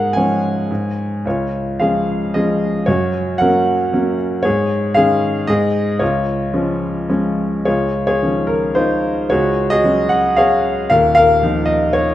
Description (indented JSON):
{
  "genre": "classical, lyrical solo piano",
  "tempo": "112 BPM",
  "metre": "3/4",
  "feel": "uneven beats, rubato",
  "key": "Db major",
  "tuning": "A4 = 436 Hz",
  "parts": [
    { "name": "warm grand piano", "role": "solo", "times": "0.0-12.1 s", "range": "Eb1 to Ab5", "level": "-14 LUFS", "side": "equal", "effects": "none" }
  ],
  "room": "moderate concert hall reverb, RT60 1.8 s",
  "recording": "none",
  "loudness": "-14 LUFS",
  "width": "side -13 dB against mid",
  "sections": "0.0-7.7 A section; 7.7-12.1 B section",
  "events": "none",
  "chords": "0.0 Db/Ab; 0.7 Absus4; 1.3 Db; 2.9 Gb; 4.4 Absus4; 5.5 N.C.; 6.0 Db; 7.7 Dbadd9; 9.3 Gbsus2/Db; 10.9 Ebsus2",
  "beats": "0.16 0.70 | 1.25 1.80 2.35 | 2.88 3.41 3.93 | 4.45 4.97 5.49 | 6.01 6.54 7.09 | 7.66 8.21 8.76 | 9.31 9.84 10.38 | 10.90 11.42 11.94"
}